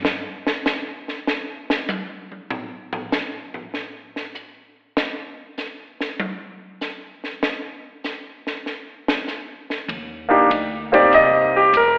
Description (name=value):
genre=jazz piano trio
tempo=98 BPM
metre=4/4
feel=swing 68% on 8ths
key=unclear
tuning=A4 = 443 Hz
part: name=upright bass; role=bass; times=0.0-0.2, 9.9-12.0 s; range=F1 to G2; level=-33 LUFS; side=equal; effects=none
part: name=compact cocktail drum kit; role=drums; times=0.0-11.9 s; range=hi-hat, kick drum, ride cymbal, snare drum, toms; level=-24 LUFS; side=equal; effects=slapback echo
part: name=warm grand piano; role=melody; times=10.3-12.0 s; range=Bb3 to Eb5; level=-12 LUFS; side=equal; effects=plate reverb
room=moderate club reverb, RT60 0.6 s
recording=live gig heard through the venue's PA, recital hall reverb, telephone sound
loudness=-19 LUFS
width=side -34 dB against mid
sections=0.0-12.0 A section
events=grand piano solo 0.0-12.0; drum solo 0.0-9.9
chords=0.0 N.C.; 9.9 Cm7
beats=| 0.04 0.66 1.27 1.88 | 2.50 3.11 3.73 4.34 | 4.96 5.58 6.19 6.81 | 7.42 8.04 8.66 9.27 | 9.89 10.50 11.12 11.73